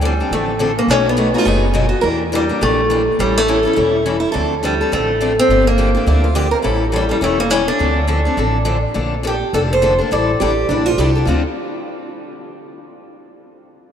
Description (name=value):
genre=acoustic string swing (jazz manouche)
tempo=208 BPM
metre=4/4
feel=swing 59% on 8ths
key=D minor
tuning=A4 = 439 Hz
part: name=picked steel-string acoustic guitar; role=accompaniment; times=0.0-11.4 s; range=B2 to A4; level=-20 LUFS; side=left 4 dB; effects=none
part: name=upright bass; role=bass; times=0.0-11.4 s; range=E1 to E2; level=-20 LUFS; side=equal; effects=none
part: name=picked acoustic archtop guitar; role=melody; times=0.1-10.9 s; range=G3 to D5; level=-17 LUFS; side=equal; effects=none
part: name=picked steel-string acoustic guitar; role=second line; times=1.3-6.9, 10.4-11.4 s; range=C#4 to Bb4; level=-24 LUFS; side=right 4 dB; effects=none
room=wet cathedral reverb, RT60 5.6 s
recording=in a vast, echoing space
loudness=-14 LUFS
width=side -8 dB against mid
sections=0.0-8.9 A section; 8.9-11.3 B section; 11.3-12.4 C section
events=none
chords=0.0 Dm7; 0.9 B7; 2.0 Em7b5; 3.2 A7; 4.3 Dm7; 5.5 Gm7; 6.6 A7; 7.8 Dm7; 8.9 Bbmaj9; 10.1 A7sus4; 11.3 Dm7